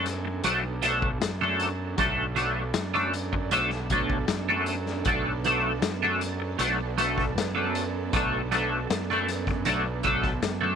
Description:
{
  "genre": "psychedelic rock",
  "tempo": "78 BPM",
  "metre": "4/4",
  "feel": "straight",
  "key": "B minor",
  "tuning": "A4 = 440 Hz",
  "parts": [
    { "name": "ensemble organ-string", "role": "sustained chords", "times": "0.0-10.8 s", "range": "B3 to A4", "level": "-35 LUFS", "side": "right 12 dB", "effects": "ensemble chorus" },
    { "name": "twangy electric guitar", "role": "riff", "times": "0.0-10.8 s", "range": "F#3 to A4", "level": "-26 LUFS", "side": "equal", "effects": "rotary speaker, double-tracked left and right" },
    { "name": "fuzz fingered electric bass", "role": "bass", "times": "0.0-10.8 s", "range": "B1 to F#2", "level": "-31 LUFS", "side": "equal", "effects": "overdrive" },
    { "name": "vintage drum kit", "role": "drums", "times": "0.1-10.6 s", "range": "hi-hat, kick drum, snare drum", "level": "-31 LUFS", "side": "left 3 dB", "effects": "none" }
  ],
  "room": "light reverb, small room reverb",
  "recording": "1960s-style stereo",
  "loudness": "-24 LUFS",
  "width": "side -7 dB against mid",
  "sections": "0.0-10.8 A section",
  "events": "none",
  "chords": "0.0 Bm7"
}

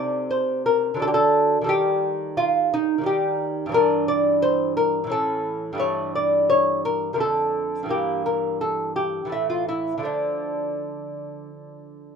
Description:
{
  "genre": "classical, baroque-style dance for lute",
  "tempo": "86 BPM",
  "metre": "3/4",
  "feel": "uneven beats, rubato",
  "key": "D minor from 3.7 s",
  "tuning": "A4 = 438 Hz",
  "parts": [
    { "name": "lute", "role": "solo", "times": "0.0-12.2 s", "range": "F2 to D5", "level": "-20 LUFS", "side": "equal", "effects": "none" }
  ],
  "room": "light reverb",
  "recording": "minimal, uncompressed stereo recording",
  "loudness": "-20 LUFS",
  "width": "side -6 dB against mid",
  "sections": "0.0-12.2 A section",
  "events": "none",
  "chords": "0.0 Adim/C; 1.0 D; 1.7 Eb; 3.7 Gm6; 5.1 A; 5.8 A5/G; 7.2 Dm/F; 7.9 Edim/G; 9.3 A5; 10.1 Dm"
}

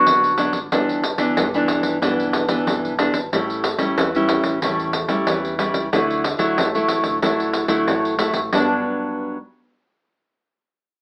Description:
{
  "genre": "samba and choro",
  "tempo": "92 BPM",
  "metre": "4/4",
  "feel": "straight",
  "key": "G major",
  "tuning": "A4 = 439 Hz",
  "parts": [
    { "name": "warm clarinet", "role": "second line", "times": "0.0-0.7, 8.5-8.8 s", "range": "D4 to F#4", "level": "-19 LUFS", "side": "equal", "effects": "none" },
    { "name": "nylon-string guitar", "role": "accompaniment", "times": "0.0-9.4 s", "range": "G2 to E4", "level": "-22 LUFS", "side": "equal", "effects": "none" },
    { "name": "deep dub fingered electric bass", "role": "bass", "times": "0.0-8.8 s", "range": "G1 to E2", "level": "-37 LUFS", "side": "equal", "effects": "none" },
    { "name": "pandeiro", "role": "percussion", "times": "0.1-8.7 s", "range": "none", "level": "-25 LUFS", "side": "equal", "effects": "none" }
  ],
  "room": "moderate studio reverb, RT60 0.6 s",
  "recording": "AM radio sound",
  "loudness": "-20 LUFS",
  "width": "mono",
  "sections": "0.0-8.5 A section; 8.5-11.0 B section",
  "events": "none",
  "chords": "0.0 Gmaj7; 0.7 Em7/G; 3.3 A7; 5.9 Dadd9; 8.5 Gmaj7"
}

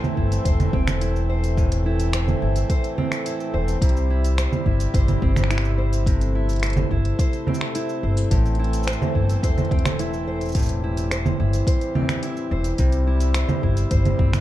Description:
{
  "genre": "folktronica",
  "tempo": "107 BPM",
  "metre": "4/4",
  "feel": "straight",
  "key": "A minor",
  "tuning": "A4 = 440 Hz",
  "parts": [
    { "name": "hand-pumped harmonium", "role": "sustained chords", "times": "0.0-14.4 s", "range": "C3 to E4", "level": "-30 LUFS", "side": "right 1 dB", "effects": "none" },
    { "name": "fingerpicked steel-string acoustic guitar", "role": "arpeggios", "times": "0.0-14.4 s", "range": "A2 to C5", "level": "-27 LUFS", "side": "left 1 dB", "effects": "ping-pong delay" },
    { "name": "organic electronic drum kit", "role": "drums", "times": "0.0-14.4 s", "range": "cabasa, congas, finger snaps, hi-hat", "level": "-26 LUFS", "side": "right 3 dB", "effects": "none" },
    { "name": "upright bass", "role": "bass", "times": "0.2-14.4 s", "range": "E1 to C2", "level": "-22 LUFS", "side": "equal", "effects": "none" },
    { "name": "electronic kick drum", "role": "drums", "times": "0.2-14.3 s", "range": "none", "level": "-21 LUFS", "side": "equal", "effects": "none" }
  ],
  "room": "little or no reverb",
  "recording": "dark, warm production",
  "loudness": "-19 LUFS",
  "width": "side -14 dB against mid",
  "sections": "0.0-14.4 A section",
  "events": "none",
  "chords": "0.0 Am; 3.8 C; 8.3 Am; 12.8 C"
}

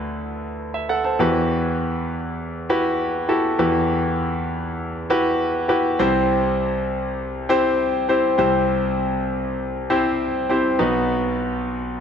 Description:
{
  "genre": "pop",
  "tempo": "100 BPM",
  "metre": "4/4",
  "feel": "straight",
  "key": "E minor",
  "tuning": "A4 = 439 Hz",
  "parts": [
    { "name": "clear concert grand piano", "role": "solo", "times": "0.0-12.0 s", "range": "B1 to A5", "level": "-19 LUFS", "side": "equal", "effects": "none" }
  ],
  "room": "light reverb",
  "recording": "none",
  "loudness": "-19 LUFS",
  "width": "side -7 dB against mid",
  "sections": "0.0-1.2 A section; 1.2-12.0 B section",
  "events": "none",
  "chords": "0.0 Dadd9; 1.2 Emadd9; 6.0 C; 10.8 B"
}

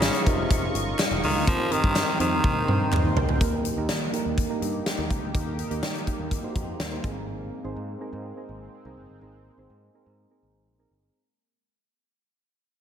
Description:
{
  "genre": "1980s-style pop",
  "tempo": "124 BPM",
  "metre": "4/4",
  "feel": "straight",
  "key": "Eb major",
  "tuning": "A4 = 438 Hz",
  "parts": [
    { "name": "raspy tenor saxophone", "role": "melody", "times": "0.0-3.1 s", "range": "C3 to F3", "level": "-27 LUFS", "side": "equal", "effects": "ping-pong delay" },
    { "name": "soft electric-piano-like synth keys", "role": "accompaniment", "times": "0.0-11.2 s", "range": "Ab2 to Db5", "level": "-31 LUFS", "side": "right 3 dB", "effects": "chorus" },
    { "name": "sweeping resonant pad", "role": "sustained chords", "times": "0.0-11.1 s", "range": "Ab3 to Db6", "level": "-34 LUFS", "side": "equal", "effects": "chorus" },
    { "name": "overdriven picked electric bass", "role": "bass", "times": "0.0-11.1 s", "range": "F1 to Eb3", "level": "-32 LUFS", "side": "equal", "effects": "none" },
    { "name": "huge arena drum kit", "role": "drums", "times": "0.0-7.2 s", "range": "hi-hat, kick drum, snare drum, tambourine, toms", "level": "-26 LUFS", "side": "equal", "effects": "none" },
    { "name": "group handclap", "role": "percussion", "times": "0.0-3.0 s", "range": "none", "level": "-40 LUFS", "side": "left 3 dB", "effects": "none" }
  ],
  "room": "light reverb, small room ambience",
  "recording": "none",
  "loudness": "-23 LUFS",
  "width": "side -9 dB against mid",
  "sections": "0.0-3.4 A section; 3.4-11.2 B section",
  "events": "drum fill 2.4-3.4; fade-out 3.4-11.2",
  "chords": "0.0 Dbadd9; 1.5 Eb6; 3.4 Eb; 7.0 Abadd9"
}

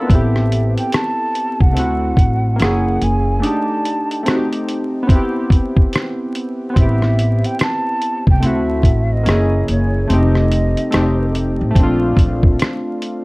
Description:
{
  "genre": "lo-fi hip hop",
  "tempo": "72 BPM",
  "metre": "4/4",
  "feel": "swing 62% on 16ths",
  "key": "unclear",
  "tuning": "A4 = 440 Hz",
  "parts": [
    { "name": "warm analog keys", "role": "accompaniment", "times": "0.0-13.2 s", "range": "A3 to F5", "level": "-19 LUFS", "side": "equal", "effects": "chorus, cassette tape, low-pass filter" },
    { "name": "breathy mellow jazz flute", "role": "melody", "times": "0.1-11.3 s", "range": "C#5 to A5", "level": "-24 LUFS", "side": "right 1 dB", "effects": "low-pass filter, tape echo, plate reverb" },
    { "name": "upright bass", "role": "bass", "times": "0.1-12.6 s", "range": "F1 to D2", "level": "-17 LUFS", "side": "equal", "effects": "none" },
    { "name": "lo-fi sampler-style drum kit", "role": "drums", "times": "0.1-13.2 s", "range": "hi-hat, kick drum, rim click", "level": "-15 LUFS", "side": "equal", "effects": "none" }
  ],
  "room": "moderate studio reverb, RT60 0.6 s",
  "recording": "dark, warm production, vinyl crackle",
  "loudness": "-14 LUFS",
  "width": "side -24 dB against mid",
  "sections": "0.0-6.8 A section; 6.8-13.2 A section",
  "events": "none",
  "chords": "0.1 Am9; 1.8 D9; 2.6 F#9; 3.4 D#maj7#11/A; 4.3 Am7b5; 5.1 Cmaj7/B; 6.8 Am9; 8.4 D9; 9.3 F#9; 10.1 F9; 11.8 Bbmaj7"
}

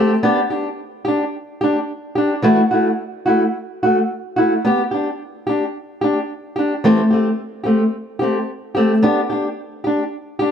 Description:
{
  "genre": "highlife",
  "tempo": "109 BPM",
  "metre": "4/4",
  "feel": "straight",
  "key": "G major",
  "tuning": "A4 = 440 Hz",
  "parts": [
    { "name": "fingerpicked old ladder-braced acoustic guitar", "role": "solo", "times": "0.0-10.5 s", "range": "E3 to G4", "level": "-16 LUFS", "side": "equal", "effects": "slapback echo" }
  ],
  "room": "light reverb",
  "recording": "dry, close 1970s-style studio recording",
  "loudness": "-16 LUFS",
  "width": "side -8 dB against mid",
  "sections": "0.2-10.5 A section",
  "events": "none",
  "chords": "0.2 G5; 2.4 Esus24; 4.6 G5; 6.8 Am; 9.0 G5"
}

